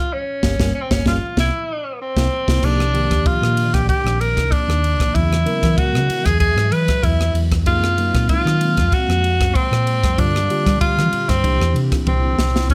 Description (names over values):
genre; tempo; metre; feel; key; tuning
electric jazz fusion; 95 BPM; 4/4; straight; unclear; A4 = 440 Hz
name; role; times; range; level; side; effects
clear tenor saxophone; melody; 0.0-12.7 s; C4 to B4; -23 LUFS; equal; slapback echo
tine electric piano; accompaniment; 0.4-12.7 s; B2 to C5; -27 LUFS; equal; phaser
hollow-body short-scale fingered electric bass; bass; 0.4-12.7 s; G1 to G3; -21 LUFS; equal; none
crisp fusion drum kit; drums; 0.4-12.7 s; crash cymbal, kick drum, ride cymbal, rim click, snare drum, toms; -23 LUFS; equal; none
phased string machine; sustained chords; 2.6-12.7 s; Bb2 to F5; -32 LUFS; equal; ensemble chorus, phaser
room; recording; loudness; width
light reverb; none; -18 LUFS; mono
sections
0.0-2.6 A section; 2.6-12.7 B section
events
band accent 0.1-2.6; drum fill 2.3-2.6, 12.1-12.7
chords
0.1 Gdim; 1.4 C7; 2.6 Cm9; 5.1 Eadd9; 7.7 Gbmaj9#11; 10.2 Gm7; 11.4 C9